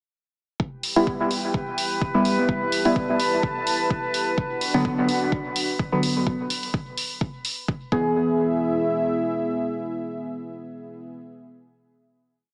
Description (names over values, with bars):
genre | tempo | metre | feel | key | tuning
dub techno | 127 BPM | 4/4 | swing 55% on 16ths | unclear | A4 = 444 Hz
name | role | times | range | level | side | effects
dark analog pad | sustained chords | 1.3-11.2 s | B3 to A5 | -30 LUFS | equal | chorus, sidechain pumping
electronic kick drum | drums | 0.6-8.0 s | none | -30 LUFS | equal | none
drifting glass-harmonics texture | texture | 1.3-6.3 s | B4 | -32 LUFS | equal | chorus, built-in reverb, sidechain pumping
electronic hi-hat | drums | 0.8-7.6 s | none | -31 LUFS | equal | none
deep mellow chord stab | stabs | 1.0-11.2 s | D3 to G#4 | -26 LUFS | equal | chorus, phaser, sidechain pumping, dub echo
room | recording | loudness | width
moderate echo chamber reverb, RT60 2.4 s | small speaker sound | -24 LUFS | mono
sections
0.6-8.2 groove; 8.2-11.9 final hit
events
none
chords
0.6 Em; 4.4 Bm; 7.9 E